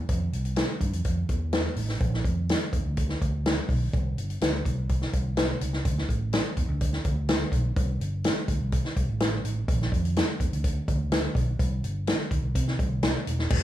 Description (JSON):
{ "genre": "uptempo 1960s-style soul", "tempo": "125 BPM", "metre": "4/4", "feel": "straight", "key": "unclear", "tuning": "A4 = 436 Hz", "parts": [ { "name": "fingered electric bass", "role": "bass", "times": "0.0-13.6 s", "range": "E1 to C3", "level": "-28 LUFS", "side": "right 1 dB", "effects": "none" }, { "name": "swinging big-band drum kit", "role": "drums", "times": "0.1-13.6 s", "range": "crash cymbal, hi-hat, kick drum, snare drum", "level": "-26 LUFS", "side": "equal", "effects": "none" } ], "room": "moderate studio reverb, RT60 0.8 s", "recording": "small room ambience", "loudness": "-24 LUFS", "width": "side -13 dB against mid", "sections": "0.0-13.5 A section", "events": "none", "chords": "none" }